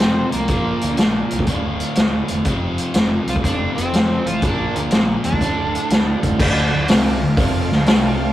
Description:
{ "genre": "blues rock power trio and southern rock", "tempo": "122 BPM", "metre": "4/4", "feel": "swing 67% on 8ths", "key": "D minor", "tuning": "A4 = 440 Hz", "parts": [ { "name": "overdriven slide guitar", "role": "melody", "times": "0.0-6.2 s", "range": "Bb3 to F4", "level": "-23 LUFS", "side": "equal", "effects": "none" }, { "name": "dark smooth lead guitar", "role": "second line", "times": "0.0-6.2 s", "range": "F4 to C5", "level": "-34 LUFS", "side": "right 3 dB", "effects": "overdrive" }, { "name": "bright tonewheel organ", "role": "sustained chords", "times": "0.0-8.3 s", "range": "F3 to A4", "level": "-31 LUFS", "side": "right 2 dB", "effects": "none" }, { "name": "distorted electric guitar", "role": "riff", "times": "0.0-8.3 s", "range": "D2 to Bb3", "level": "-23 LUFS", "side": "equal", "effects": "distortion" }, { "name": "fuzz picked electric bass", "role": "bass", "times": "0.0-8.3 s", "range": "D1 to F2", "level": "-26 LUFS", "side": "equal", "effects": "overdrive" }, { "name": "vintage drum kit", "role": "drums", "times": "0.0-8.0 s", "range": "crash cymbal, hi-hat, kick drum, snare drum", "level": "-18 LUFS", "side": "equal", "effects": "none" } ], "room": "moderate studio reverb, RT60 0.6 s", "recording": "rough rehearsal-room recording, warm saturation", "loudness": "-16 LUFS", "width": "side -13 dB against mid", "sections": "0.0-6.4 A section; 6.4-8.3 B section", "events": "none", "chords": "0.5 Bb; 1.5 Dm; 2.5 F; 4.4 Bb; 5.4 Dm" }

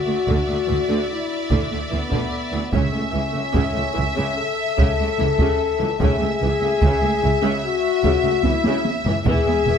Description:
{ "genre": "cinematic, epic orchestral film score", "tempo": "74 BPM", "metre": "4/4", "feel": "straight", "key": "unclear", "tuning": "A4 = 439 Hz", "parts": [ { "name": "warm symphonic violin section", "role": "melody", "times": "0.0-9.8 s", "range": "E5", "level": "-32 LUFS", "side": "left 3 dB", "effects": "none" }, { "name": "warm symphonic violin section", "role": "second line", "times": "0.0-9.8 s", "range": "D5 to E5", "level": "-27 LUFS", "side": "left 1 dB", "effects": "none" }, { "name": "mellow French horn section", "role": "sustained chords", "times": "0.0-9.8 s", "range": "B3 to A4", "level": "-23 LUFS", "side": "left 6 dB", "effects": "none" }, { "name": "warm symphonic viola section", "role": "accompaniment", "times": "0.1-9.8 s", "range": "C#3 to A3", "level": "-28 LUFS", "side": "right 2 dB", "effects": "none" }, { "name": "rich symphonic cello section", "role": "bass", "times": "0.1-9.8 s", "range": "C#2 to E2", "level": "-26 LUFS", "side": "right 2 dB", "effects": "none" }, { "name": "dark symphonic double bass section", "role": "bass", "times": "0.3-9.7 s", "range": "E1 to D2", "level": "-25 LUFS", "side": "right 3 dB", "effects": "none" }, { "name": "taiko ensemble", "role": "drums", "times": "0.3-9.8 s", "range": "none", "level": "-24 LUFS", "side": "equal", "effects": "none" } ], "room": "moderate scoring stage reverb, RT60 1.9 s", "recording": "close, detailed microphones", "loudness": "-18 LUFS", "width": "side -7 dB against mid", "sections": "0.0-9.8 A section", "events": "drum fill 8.4-9.3", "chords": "0.0 Dsus2; 2.7 A/C#; 9.3 E" }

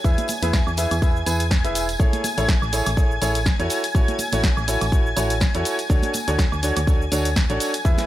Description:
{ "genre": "piano house", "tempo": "123 BPM", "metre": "4/4", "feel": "swing 56% on 16ths", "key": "A major", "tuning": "A4 = 444 Hz", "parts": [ { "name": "analog string pad", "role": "sustained chords", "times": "0.0-8.1 s", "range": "G#5 to G#6", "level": "-28 LUFS", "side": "left 1 dB", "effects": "ensemble chorus, sidechain pumping" }, { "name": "clear baby grand piano", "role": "riff", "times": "0.0-8.1 s", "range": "D4 to G#5", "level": "-25 LUFS", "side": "right 1 dB", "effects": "sidechain pumping, low-pass filter, dub echo" }, { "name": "solid FM bass", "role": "bass", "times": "0.0-8.0 s", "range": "E1 to E2", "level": "-25 LUFS", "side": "equal", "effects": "sidechain pumping" }, { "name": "electronic kick drum", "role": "drums", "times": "0.0-8.0 s", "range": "none", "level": "-19 LUFS", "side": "equal", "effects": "none" }, { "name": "tambourine and congas", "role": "percussion", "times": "0.0-8.1 s", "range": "none", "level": "-33 LUFS", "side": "right 3 dB", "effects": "none" }, { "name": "punchy analog drum machine", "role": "drums", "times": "0.1-8.1 s", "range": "hi-hat, shaker, snare drum, woodblock", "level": "-27 LUFS", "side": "equal", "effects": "none" } ], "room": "little or no reverb", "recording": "none", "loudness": "-18 LUFS", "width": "side -14 dB against mid", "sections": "0.0-8.1 A section", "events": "none", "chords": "0.0 E; 2.0 Amaj7; 5.9 Dmaj7" }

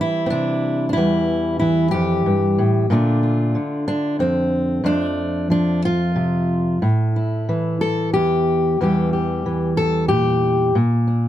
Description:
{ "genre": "folk, solo fingerstyle acoustic guitar", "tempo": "61 BPM (dotted quarters)", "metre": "6/8", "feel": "straight", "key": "unclear", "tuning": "A4 = 439 Hz", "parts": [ { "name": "fingerpicked steel-string acoustic guitar", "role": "solo", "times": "0.0-11.3 s", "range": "E2 to A4", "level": "-17 LUFS", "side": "equal", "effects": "none" } ], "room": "little or no reverb", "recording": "close, detailed microphones", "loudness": "-17 LUFS", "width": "side -12 dB against mid", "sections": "0.0-11.3 A section", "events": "none", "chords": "0.0 C; 1.0 Emadd11; 2.9 Bbmaj7; 4.9 F; 6.8 A5; 8.8 Edim; 10.8 Bb" }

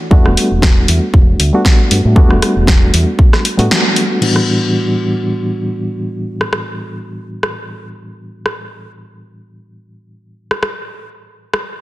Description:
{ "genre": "nu-disco, nu disco", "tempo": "117 BPM", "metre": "4/4", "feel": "swing 54% on 16ths", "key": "unclear", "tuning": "A4 = 440 Hz", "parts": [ { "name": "reed electric piano", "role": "accompaniment", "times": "0.1-11.8 s", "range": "A2 to F#4", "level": "-16 LUFS", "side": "equal", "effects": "fast tremolo, sidechain pumping, low-pass filter, digital delay" }, { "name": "fingered electric bass with an envelope filter", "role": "bass", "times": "0.1-3.7 s", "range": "E1 to A2", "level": "-14 LUFS", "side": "equal", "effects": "none" }, { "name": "electronic kick drum", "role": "drums", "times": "0.1-3.3 s", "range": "none", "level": "-9 LUFS", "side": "equal", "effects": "small room ambience" }, { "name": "house drum kit", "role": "drums", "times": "0.3-11.6 s", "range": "crash cymbal, hi-hat, rim click, snare drum", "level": "-17 LUFS", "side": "equal", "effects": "soft clipping on snare, small room ambience" } ], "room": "light reverb", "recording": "dense, heavily limited modern master", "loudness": "-11 LUFS", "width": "side -17 dB against mid", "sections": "0.0-4.2 A section; 4.2-11.8 B section", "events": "band accent 3.7; filter sweep on reed electric piano 4.2-11.8", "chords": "0.0 Em11; 4.2 A13sus4" }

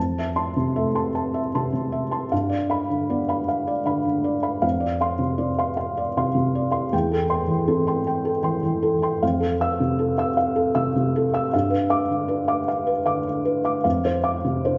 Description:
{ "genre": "neoclassical minimalist piano", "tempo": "52 BPM (dotted quarters)", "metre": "6/8", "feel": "rubato", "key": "unclear", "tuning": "A4 = 440 Hz", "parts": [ { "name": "felt-muted upright piano", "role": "solo", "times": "0.0-14.8 s", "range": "E2 to E6", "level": "-23 LUFS", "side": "equal", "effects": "none" } ], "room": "wet recital hall reverb, RT60 1.7 s", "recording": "nothing above 7.6 kHz", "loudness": "-23 LUFS", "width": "mono", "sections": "0.0-14.8 A section", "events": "none", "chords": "0.0 Fmaj7; 2.3 G7; 4.6 Dm7/F; 6.9 Am7/E; 9.2 Fmaj7; 11.5 G7; 13.8 Dm7/F" }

